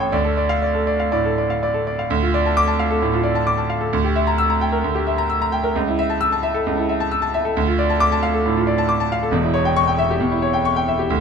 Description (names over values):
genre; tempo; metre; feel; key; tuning
classical, virtuoso piano study; 119-138 BPM; 4/4; rubato; D minor; A4 = 440 Hz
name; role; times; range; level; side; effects
clear concert grand piano; solo; 0.0-11.2 s; E1 to E6; -17 LUFS; equal; none
room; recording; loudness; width
moderate small room ambience, RT60 0.5 s; none; -17 LUFS; side -6 dB against mid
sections
0.0-2.1 A section; 2.1-11.2 B section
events
none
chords
0.1 Dm; 3.9 Em7b5/D; 5.8 A/C#; 7.6 Dm; 9.3 C#dim/E